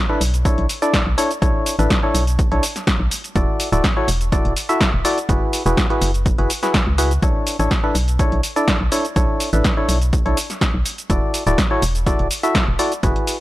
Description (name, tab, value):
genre	piano house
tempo	124 BPM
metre	4/4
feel	straight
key	B dorian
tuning	A4 = 438 Hz
part	percussive organ stab	riff	0.1-13.4 s	D4 to E5	-21 LUFS	equal	chorus, sidechain pumping, analog delay
part	organ-like FM bass	bass	0.2-13.1 s	D1 to C#2	-19 LUFS	equal	sidechain pumping
part	punchy analog drum machine	drums	0.2-13.4 s	hi-hat, shaker, snare drum	-22 LUFS	equal	none
part	electronic kick drum	drums	0.5-13.1 s	none	-20 LUFS	equal	none
room	little or no reverb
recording	dry, gritty hardware recording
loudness	-16 LUFS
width	side -16 dB against mid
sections	0.0-13.4 A section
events	none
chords	0.0 Bm11; 3.1 E9sus4; 5.3 F#9sus4; 7.2 Bm11; 10.9 E9sus4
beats	0.45 0.94 | 1.42 1.90 2.39 2.87 | 3.35 3.84 4.32 4.81 | 5.29 5.77 6.26 6.74 | 7.23 7.71 8.19 8.68 | 9.16 9.64 10.13 10.61 | 11.10 11.58 12.06 12.55 | 13.03